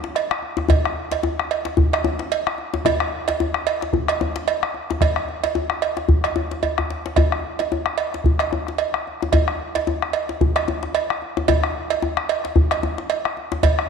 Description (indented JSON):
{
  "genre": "west african traditional, West African drum ensemble",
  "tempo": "111 BPM",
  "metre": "4/4",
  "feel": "swing 57% on 16ths",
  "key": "none",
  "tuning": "none",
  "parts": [
    { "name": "bombo", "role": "percussion", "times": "0.0-13.9 s", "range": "none", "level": "-24 LUFS", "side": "left 1 dB", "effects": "none" },
    { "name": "djembe", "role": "percussion", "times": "0.0-13.8 s", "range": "none", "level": "-23 LUFS", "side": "left 4 dB", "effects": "none" },
    { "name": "cowbell", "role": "percussion", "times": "0.2-13.8 s", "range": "none", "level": "-24 LUFS", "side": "right 8 dB", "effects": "none" }
  ],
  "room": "wet echo chamber reverb, RT60 1.8 s, studio ambience",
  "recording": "1960s-style stereo",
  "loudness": "-19 LUFS",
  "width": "side -6 dB against mid",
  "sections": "0.0-13.9 A section",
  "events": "drum fill 6.6-7.2",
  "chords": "none"
}